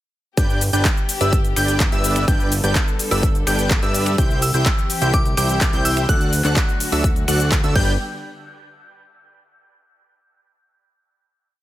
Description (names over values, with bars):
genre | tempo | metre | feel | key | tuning
EDM, festival progressive house | 126 BPM | 4/4 | straight | G major | A4 = 440 Hz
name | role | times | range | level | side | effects
dark chamber string section | sustained chords | 0.4-8.0 s | D3 to A4 | -29 LUFS | left 1 dB | sidechain pumping
plucky unison lead | arpeggios | 0.4-7.9 s | E6 to G6 | -26 LUFS | equal | cassette tape, sidechain pumping, dub echo
dense compressed supersaw | riff | 0.4-7.9 s | D4 to G5 | -25 LUFS | right 1 dB | sidechain pumping, dub echo
fat analog bass | bass | 0.4-8.0 s | G1 to G2 | -22 LUFS | equal | sidechain pumping
big-room dance drum kit | drums | 0.4-7.9 s | crash cymbal, finger snaps, handclaps, hi-hat, shaker | -24 LUFS | equal | overdrive
electronic kick drum | drums | 0.4-7.9 s | none | -19 LUFS | equal | overdrive
glassy synth bell | melody | 4.4-8.0 s | D6 to G6 | -28 LUFS | equal | chorus, dub echo
room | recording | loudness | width
light reverb | none | -16 LUFS | side -14 dB against mid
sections
0.4-8.0 drop; 8.0-9.9 final hit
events
drop 0.4-8.0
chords
0.4 G; 4.2 C; 6.1 D; 7.8 G; 8.0 N.C.